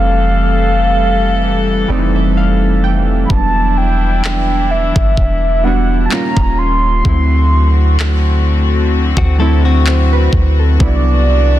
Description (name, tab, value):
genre	contemporary R&B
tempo	64 BPM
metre	4/4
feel	swing 54% on 16ths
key	unclear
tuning	A4 = 438 Hz
part	mellow horn-like synth lead	melody	0.0-11.6 s	D5 to C6	-18 LUFS	right 1 dB	chorus, digital delay
part	warm analog keys	accompaniment	0.0-11.6 s	E3 to G5	-19 LUFS	right 2 dB	chorus
part	warm studio string section	sustained chords	0.0-11.6 s	C3 to A4	-20 LUFS	left 3 dB	sidechain pumping
part	soft 808-style bass	bass	0.0-11.6 s	D#1 to D2	-13 LUFS	equal	none
part	smooth R&B drum kit	drums	3.3-11.0 s	handclaps, kick drum	-17 LUFS	equal	none
part	direct-recorded clean electric guitar	arpeggios	9.2-10.8 s	C4 to A4	-22 LUFS	left 8 dB	digital delay
room	little or no reverb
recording	dense, heavily limited modern master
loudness	-10 LUFS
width	side -13 dB against mid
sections	0.0-11.6 A section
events	synth keys fill 1.4-3.3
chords	0.0 Fmaj9; 3.3 Em9; 6.1 D#9; 7.1 D7; 10.8 Cmaj9#11